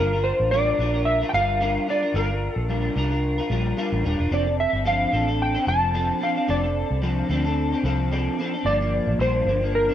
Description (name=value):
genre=indie pop, bedroom pop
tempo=111 BPM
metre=4/4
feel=swing 55% on 16ths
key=unclear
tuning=A4 = 440 Hz
part: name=clean lap steel guitar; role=melody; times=0.0-9.9 s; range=Bb4 to A5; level=-23 LUFS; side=equal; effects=ensemble chorus
part: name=electric guitar at the edge of break-up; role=accompaniment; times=0.0-9.9 s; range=G2 to Bb4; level=-25 LUFS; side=left 1 dB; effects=analog chorus, vibrato effect
part: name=vintage muted fingered electric bass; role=bass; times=0.0-9.9 s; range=Eb1 to D2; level=-25 LUFS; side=equal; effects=none
room=light reverb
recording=cassette tape, nothing above 10.6 kHz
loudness=-20 LUFS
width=side -10 dB against mid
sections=0.0-9.9 A section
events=none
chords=0.0 Gm7; 4.3 F6; 8.7 Gm7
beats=0.51 1.05 1.60 | 2.14 2.68 3.23 3.77 | 4.31 4.86 5.40 5.94 | 6.48 7.03 7.57 8.11 | 8.65 9.19 9.74